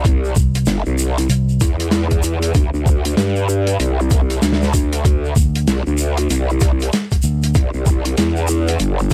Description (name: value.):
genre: glitch hop.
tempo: 96 BPM.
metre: 4/4.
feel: swing 61% on 16ths.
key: unclear.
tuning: A4 = 440 Hz.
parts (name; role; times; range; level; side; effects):
growl bass; bass; 0.0-9.1 s; G1 to G2; -20 LUFS; equal; chorus, overdrive.
electronic kick drum; drums; 0.0-9.1 s; none; -17 LUFS; equal; overdrive.
tube shaker; percussion; 0.0-9.1 s; none; -32 LUFS; equal; none.
warm soul drum kit; drums; 0.1-9.1 s; hi-hat, snare drum; -23 LUFS; equal; none.
fingered electric bass; bass; 0.4-1.6, 5.4-7.5 s; C2 to D2; -19 LUFS; equal; tube saturation.
warbly tape-like pad; texture; 8.4-9.1 s; D4; -38 LUFS; equal; none.
room: little or no reverb.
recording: dry, gritty hardware recording.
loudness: -17 LUFS.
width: mono.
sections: 0.0-9.1 A section.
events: none.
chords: 0.0 C; 2.5 Csus2; 7.5 C.